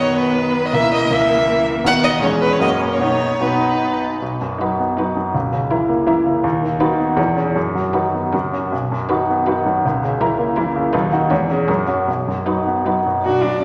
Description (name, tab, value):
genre	quick classical-period movement for piano quartet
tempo	148-167 BPM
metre	3/4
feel	rubato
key	B major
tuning	A4 = 444 Hz
part	clear violin	melody	0.0-13.6 s	A#4 to F#5	-24 LUFS	equal	none
part	rich cello	second line	0.0-13.6 s	C#3 to F#4	-28 LUFS	equal	none
part	clear concert grand piano	accompaniment	0.0-13.6 s	B1 to B4	-20 LUFS	equal	none
part	warm viola	accompaniment	0.0-13.6 s	A#3 to G#4	-28 LUFS	equal	none
room	wet scoring stage reverb, RT60 1.7 s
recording	none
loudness	-18 LUFS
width	mono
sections	0.0-4.2 A section; 4.2-13.3 B section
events	none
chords	0.0 B; 0.8 A#dim/C#; 1.9 B/D#; 2.2 C#m/E; 2.6 F#; 3.0 B; 5.3 A#dim/C#; 6.4 B/D#; 7.2 C#m/E; 7.6 B/F#; 8.3 F#; 8.7 B; 9.8 A#dim/C#; 10.9 B/D#; 11.3 C#m/E; 11.7 F#; 12.1 B